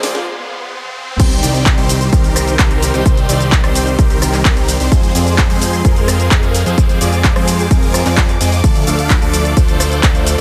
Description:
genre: EDM, festival progressive house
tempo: 129 BPM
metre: 4/4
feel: straight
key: C minor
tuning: A4 = 440 Hz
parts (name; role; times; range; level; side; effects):
- bright studio string section; sustained chords; 0.0-10.4 s; Eb4 to D6; -28 LUFS; equal; sidechain pumping
- supersaw chords; riff; 0.0-10.4 s; Eb3 to F5; -20 LUFS; equal; phaser, sidechain pumping, tape echo
- fat analog bass; bass; 0.0-10.4 s; C2 to F2; -20 LUFS; equal; sidechain pumping, high-pass filter
- house drum kit; drums; 0.0-10.4 s; crash cymbal, handclaps, hi-hat, ride cymbal, rim click, shaker, snare drum, toms; -21 LUFS; equal; overdrive
- riser; sound effects; 0.0-1.2 s; none; -30 LUFS; equal; none
- electronic kick drum; drums; 1.2-10.1 s; none; -15 LUFS; equal; overdrive
room: little or no reverb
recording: high-pass filter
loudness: -13 LUFS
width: mono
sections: 0.0-1.2 A section; 1.2-10.4 B section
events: build-up 0.0-1.2; drum fill 0.0, 0.8-1.2; riser 0.0-1.2; break 0.3-1.2; drop 1.2-10.4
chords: 0.0 Fm; 1.2 Cm; 4.9 Fm; 8.6 Dm

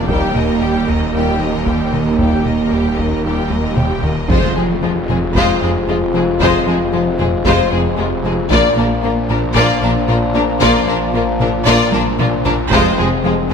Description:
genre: cinematic, hybrid orchestral and electronic film score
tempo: 114 BPM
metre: 4/4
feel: straight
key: F dorian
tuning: A4 = 439 Hz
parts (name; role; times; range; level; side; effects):
- rich studio violin section; melody; 0.0-13.5 s; F4 to G5; -21 LUFS; left 4 dB; none
- bright symphonic violin section; second line; 0.0-13.3 s; Ab3 to Bb4; -23 LUFS; left 3 dB; none
- rich symphonic viola section; accompaniment; 0.0-13.5 s; G3 to Bb3; -23 LUFS; right 1 dB; none
- clear symphonic cello section; bass; 0.0-13.5 s; Eb2 to Bb2; -24 LUFS; right 4 dB; none
- dark tuba; bass; 0.0-13.5 s; F1 to Eb2; -23 LUFS; right 4 dB; none
- rich studio double bass section; bass; 0.0-13.5 s; F1 to Eb2; -25 LUFS; right 5 dB; none
- snarling distorted saw bass; bass; 0.0-13.5 s; Eb1 to Bb1; -24 LUFS; equal; distortion
- mellow French horn section; sustained chords; 0.1-13.5 s; Ab3 to F4; -22 LUFS; left 4 dB; none
- warm trombone section; sustained chords; 0.1-13.5 s; Bb2 to G3; -25 LUFS; right 2 dB; none
- round analog bass; riff; 0.1-13.5 s; Eb2 to Bb3; -22 LUFS; left 3 dB; none
- taiko ensemble; drums; 0.1-13.5 s; none; -23 LUFS; equal; none
- impact; sound effects; 4.3-6.4 s; none; -27 LUFS; equal; none
room: wet scoring stage reverb, RT60 1.7 s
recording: none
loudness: -13 LUFS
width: side -6 dB against mid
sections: 0.0-4.3 A section; 4.3-13.5 B section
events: drum fill 3.5-4.3, 11.9-12.7; impact 4.3-6.4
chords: 0.1 Eb; 4.3 Fm; 8.5 Bb; 12.7 Fm

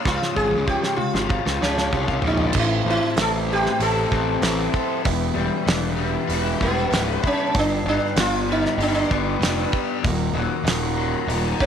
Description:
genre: psychedelic rock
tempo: 96 BPM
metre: 4/4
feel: straight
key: unclear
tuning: A4 = 440 Hz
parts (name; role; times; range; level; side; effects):
- mellow tonewheel organ; sustained chords; 0.0-11.7 s; Bb4 to Db6; -30 LUFS; right 15 dB; slow rotary speaker
- crunchy overdriven guitar; riff; 0.0-11.7 s; Db2 to A4; -25 LUFS; left 11 dB; flanger
- sitar; melody; 0.1-11.7 s; B3 to A4; -24 LUFS; right 1 dB; tape echo
- fuzz picked electric bass; bass; 0.1-11.7 s; Db1 to Db2; -25 LUFS; right 1 dB; overdrive
- damped 70s drum kit; drums; 0.1-11.7 s; crash cymbal, hi-hat, kick drum, snare drum, toms; -26 LUFS; right 2 dB; none
room: light reverb, small room ambience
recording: 1960s-style stereo with parts hard left and right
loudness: -19 LUFS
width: side -8 dB against mid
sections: 0.0-2.5 A section; 2.5-11.7 B section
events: drum fill 0.0-2.5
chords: 0.0 Db; 2.5 Am; 5.0 Em; 7.5 G; 10.0 Ebm

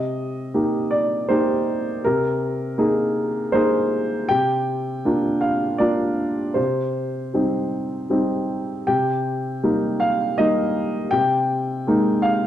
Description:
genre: neoclassical minimalist piano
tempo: 80 BPM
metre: 3/4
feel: rubato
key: unclear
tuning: A4 = 440 Hz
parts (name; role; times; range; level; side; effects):
- warm upright piano; solo; 0.0-12.5 s; C3 to G5; -19 LUFS; equal; slapback echo
room: light reverb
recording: dry, close 1970s-style studio recording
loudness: -19 LUFS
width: side -11 dB against mid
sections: 0.0-12.5 A section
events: none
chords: 0.0 Eb/C; 2.0 Abadd9/C; 4.3 Bb/C; 6.6 Cm; 8.9 Eb/C; 11.1 Abadd9/C

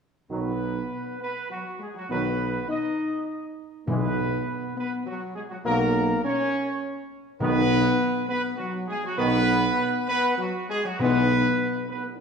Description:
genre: classical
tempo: 101 BPM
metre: 3/4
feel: straight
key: B major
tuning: A4 = 439 Hz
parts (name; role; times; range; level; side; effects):
- dark trumpet section; melody; 0.3-12.0 s; F#4 to D#5; -28 LUFS; right 2 dB; none
- mellow French horn section; sustained chords; 0.3-12.1 s; F#3 to D#4; -27 LUFS; left 3 dB; none
- mellow trombone section; sustained chords; 0.3-11.2 s; D#3 to B3; -33 LUFS; right 2 dB; none
- warm tuba; bass; 0.3-11.5 s; B1; -28 LUFS; right 3 dB; none
- timpani; percussion; 3.9-8.2, 11.0-11.9 s; B2; -31 LUFS; left 2 dB; none
room: wet scoring stage reverb, RT60 1.7 s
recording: minimal, uncompressed stereo recording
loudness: -23 LUFS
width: side -6 dB against mid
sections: 0.3-12.2 A section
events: none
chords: 0.3 B; 3.9 E/B (rootless); 5.7 F#/B (rootless); 7.4 B5; 11.0 E/B

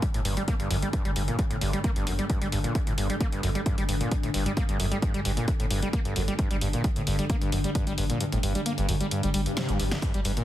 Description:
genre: driving peak-time techno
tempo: 132 BPM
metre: 4/4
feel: straight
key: G minor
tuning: A4 = 440 Hz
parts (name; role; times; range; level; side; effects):
- screaming distorted acid line; riff; 0.0-10.4 s; F#2 to Bb3; -30 LUFS; equal; distortion, lush chorus, sidechain pumping, ping-pong delay
- metallic inharmonic drone; drone; 0.0-10.4 s; G2 to D3; -34 LUFS; equal; chorus, built-in reverb, phaser, sidechain pumping
- electronic kick drum; drums; 0.0-10.1 s; none; -28 LUFS; equal; overdrive
- punchy analog drum machine; drums; 0.0-10.4 s; hi-hat, snare drum; -34 LUFS; left 1 dB; sidechain pumping on hats
- saturated sub bass; bass; 0.1-10.4 s; G1; -31 LUFS; equal; overdrive, sidechain pumping, low-pass filter
- swell; sound effects; 9.3-10.0 s; none; -36 LUFS; left 1 dB; none
- shaker; drums; 10.0-10.4 s; none; -43 LUFS; left 2 dB; none
room: light reverb, digital ambience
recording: heavily compressed radio sound, multiband compression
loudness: -24 LUFS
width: side -13 dB against mid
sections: 0.0-10.4 A section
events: kick drops out 8.2-10.0; swell 9.3-10.0; drum fill 9.6-10.0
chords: 0.0 G5

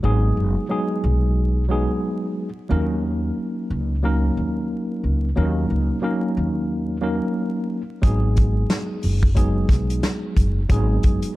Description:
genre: hip hop, boom-bap hip-hop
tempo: 90 BPM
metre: 4/4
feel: swing 59% on 16ths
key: G# minor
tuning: A4 = 441 Hz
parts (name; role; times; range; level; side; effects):
- tine electric piano; accompaniment; 0.0-11.3 s; F#3 to A#4; -23 LUFS; equal; overdrive, fast stereo tremolo, cassette tape
- upright bass; bass; 0.0-11.2 s; F#1 to D#2; -21 LUFS; equal; none
- warm soul drum kit; drums; 8.0-11.4 s; hi-hat, kick drum, snare drum; -20 LUFS; equal; none
room: little or no reverb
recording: dark, warm production, vinyl crackle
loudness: -19 LUFS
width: side -17 dB against mid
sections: 0.0-11.4 A section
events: none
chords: 0.0 G#m7; 2.7 D#m7; 8.0 G#m7

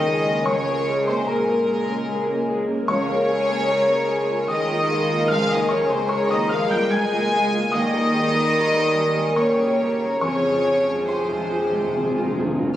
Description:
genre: cinematic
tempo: 74 BPM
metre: 3/4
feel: rubato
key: F minor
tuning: A4 = 438 Hz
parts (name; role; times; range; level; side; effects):
- warm symphonic violin section; melody; 0.0-12.3 s; Bb4 to Ab5; -26 LUFS; left 1 dB; none
- mellow large flute ensemble; second line; 0.0-12.4 s; F5 to Bb5; -32 LUFS; left 1 dB; none
- warm symphonic violin section; second line; 0.0-12.4 s; Bb4 to Ab5; -27 LUFS; left 1 dB; none
- dark concert grand piano; accompaniment; 0.0-12.8 s; Db2 to Ab6; -26 LUFS; left 1 dB; none
- dark symphonic viola section; accompaniment; 0.0-12.8 s; F3 to Bb4; -30 LUFS; equal; none
- dark French horn section; sustained chords; 0.0-12.4 s; F3 to Bb4; -25 LUFS; left 1 dB; none
- rich symphonic cello section; bass; 0.0-12.4 s; Bb2 to Ab3; -28 LUFS; right 2 dB; none
- warm symphonic double bass section; bass; 0.0-12.6 s; Db2 to F2; -33 LUFS; right 2 dB; none
- timpani; percussion; 10.2-12.7 s; F2; -28 LUFS; equal; none
room: moderate scoring stage reverb, RT60 2.2 s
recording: recorded on a phone in the room, club reverb, compression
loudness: -18 LUFS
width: side -12 dB against mid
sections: 0.0-12.8 A section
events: timpani fill 10.2-12.8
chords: 0.0 Db6; 2.9 Bbm7/Db; 7.7 Eb; 10.2 Fm

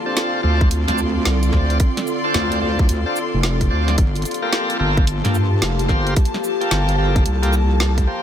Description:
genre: glitch hop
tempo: 110 BPM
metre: 4/4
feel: swing 64% on 16ths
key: D minor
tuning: A4 = 440 Hz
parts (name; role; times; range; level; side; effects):
- warbly tape-like pad; sustained chords; 0.0-8.2 s; D3 to A4; -26 LUFS; equal; chorus, built-in reverb, phaser, vintage 12-bit sampler grit, sidechain pumping
- warm studio string section; texture; 0.0-8.2 s; F4 to C6; -28 LUFS; left 2 dB; sidechain pumping
- bright tonewheel organ; stabs; 0.1-8.2 s; Bb3 to D5; -24 LUFS; equal; overdrive, slow rotary speaker, sidechain pumping, ping-pong delay
- drum and bass drum kit; drums; 0.2-8.1 s; hi-hat, shaker, snare drum; -25 LUFS; equal; none
- wobble bass; bass; 0.4-8.1 s; F1 to G2; -18 LUFS; equal; chorus, tube saturation
- electronic kick drum; drums; 0.6-8.1 s; none; -17 LUFS; equal; none
room: light reverb, digital ambience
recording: none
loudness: -16 LUFS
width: side -10 dB against mid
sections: 0.0-8.2 A section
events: none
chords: 0.0 Dm7; 4.0 Gm9

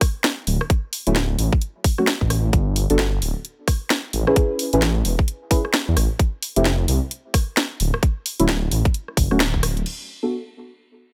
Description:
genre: UK garage, two-step garage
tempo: 131 BPM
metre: 4/4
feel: swing 61% on 16ths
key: unclear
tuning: A4 = 440 Hz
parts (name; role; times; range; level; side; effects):
- electronic kick drum; drums; 0.0-9.6 s; none; -21 LUFS; equal; none
- garage drum kit; drums; 0.0-10.0 s; crash cymbal, hi-hat, rim click, snare drum; -26 LUFS; equal; none
- dark detuned saw bass; bass; 0.5-9.8 s; D1 to E2; -23 LUFS; equal; none
- deep mellow chord stab; stabs; 1.1-10.3 s; F#3 to B4; -24 LUFS; equal; chorus, phaser, tape echo
room: little or no reverb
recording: none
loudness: -21 LUFS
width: mono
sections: 0.0-9.9 A section; 9.9-11.1 B section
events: band accent 9.4; filter sweep on synth stab 9.9-11.1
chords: 0.5 Dmaj7; 2.5 Gmaj9; 4.1 Amaj9; 6.2 Fmaj9; 7.8 Dmaj7; 9.9 Bm7

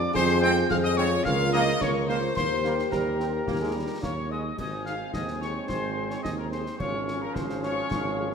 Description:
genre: military-style march for wind band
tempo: 108 BPM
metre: 2/4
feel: straight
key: Ab major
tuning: A4 = 443 Hz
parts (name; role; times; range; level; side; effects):
- clear euphonium; second line; 0.0-4.3 s; F4 to Ab4; -32 LUFS; right 5 dB; none
- piccolo; second line; 0.0-8.3 s; Bb5 to G6; -33 LUFS; left 3 dB; none
- warm woodwind section; second line; 0.0-8.3 s; Ab4 to Ab5; -36 LUFS; left 1 dB; none
- mellow tuba; bass; 0.0-8.3 s; Ab1 to F2; -29 LUFS; right 1 dB; none
- clear trumpet section; melody; 0.1-8.3 s; Bb4 to G5; -32 LUFS; left 1 dB; none
- mellow French horn section; accompaniment; 0.1-8.3 s; Bb3 to Bb4; -32 LUFS; left 4 dB; none
- concert snare drum, clash cymbals and concert bass drum; drums; 0.2-8.1 s; none; -37 LUFS; left 2 dB; none
- clear trombone section; sustained chords; 0.4-8.3 s; F3 to Db4; -34 LUFS; right 3 dB; none
room: wet scoring stage reverb, RT60 1.7 s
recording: none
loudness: -24 LUFS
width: side -6 dB against mid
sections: 0.0-4.6 A section; 4.6-8.3 B section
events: none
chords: 0.1 Fm; 1.3 Bbm/Db; 2.4 Eb; 4.6 Ab; 6.8 Db/Ab

